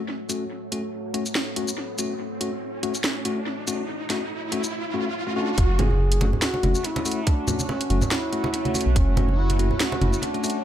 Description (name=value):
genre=deep dubstep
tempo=142 BPM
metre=4/4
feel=swing 55% on 16ths, half-time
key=F# minor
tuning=A4 = 436 Hz
part: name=deep dark ambient pad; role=sustained chords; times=0.0-10.6 s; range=A3 to F#5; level=-34 LUFS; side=right 1 dB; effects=chorus, built-in reverb
part: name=riser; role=sound effects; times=0.7-5.6 s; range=none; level=-34 LUFS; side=right 2 dB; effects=none
part: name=bell-like tine electric piano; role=stabs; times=0.3-10.6 s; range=A3 to F#4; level=-30 LUFS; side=left 4 dB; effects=analog delay
part: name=garage drum kit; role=drums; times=0.3-10.6 s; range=handclaps, hi-hat, shaker, snare drum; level=-28 LUFS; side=equal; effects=overdrive, studio reverb, analog delay
part: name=dark duduk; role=melody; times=5.4-10.6 s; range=C#4 to G#4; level=-29 LUFS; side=equal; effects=dub echo
part: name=dark detuned saw bass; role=bass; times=5.6-10.1 s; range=F#1 to B1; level=-21 LUFS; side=equal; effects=tube saturation
part: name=electronic kick drum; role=drums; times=5.6-9.1 s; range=none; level=-20 LUFS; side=equal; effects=overdrive, studio reverb
part: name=backwards swelling texture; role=texture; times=6.2-10.6 s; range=A3 to F#4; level=-34 LUFS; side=right 1 dB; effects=built-in reverb
part: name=congas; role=percussion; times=5.8-10.3 s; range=none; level=-29 LUFS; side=right 2 dB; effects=dub echo
room=light reverb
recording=echo-heavy mix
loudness=-22 LUFS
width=side -11 dB against mid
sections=0.0-5.6 A section; 5.6-10.6 B section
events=build-up 0.0-5.6; riser 0.7-5.6; drop 5.6-10.6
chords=0.0 F#m